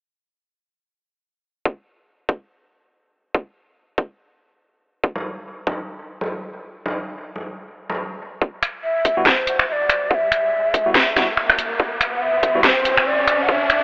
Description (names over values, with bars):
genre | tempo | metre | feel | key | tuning
deep dubstep | 142 BPM | 4/4 | swing 58% on 16ths, half-time | E minor | A4 = 440 Hz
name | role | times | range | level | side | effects
electronic kick drum | drums | 1.7-5.8, 8.4-13.6 s | none | -20 LUFS | equal | high-pass filter on kick
congas | percussion | 5.2-8.0 s | none | -29 LUFS | equal | dub echo
riser | sound effects | 10.3-13.8 s | none | -25 LUFS | equal | none
garage drum kit | drums | 8.6-13.8 s | finger snaps, handclaps, hi-hat, snare drum | -18 LUFS | equal | none
breathy mellow ney | melody | 8.8-13.8 s | C5 to F#5 | -20 LUFS | equal | dub echo
tine electric piano | stabs | 9.2-12.7 s | G3 to F#4 | -28 LUFS | equal | dub echo
room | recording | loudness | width
moderate huge ambient reverb, RT60 4.0 s | telephone sound | -18 LUFS | side -39 dB against mid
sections
1.7-8.4 A section; 8.4-13.8 B section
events
break 6.7-8.4; build-up 8.4-13.8; riser 10.3-13.8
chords
1.7 N.C.; 8.4 Emadd9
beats
| 1.66 2.08 2.50 2.92 | 3.35 3.77 4.19 4.61 | 5.04 5.46 5.88 6.30 | 6.73 7.15 7.57 7.99 | 8.42 8.84 9.26 9.68 | 10.11 10.53 10.95 11.37 | 11.80 12.22 12.64 13.06 | 13.49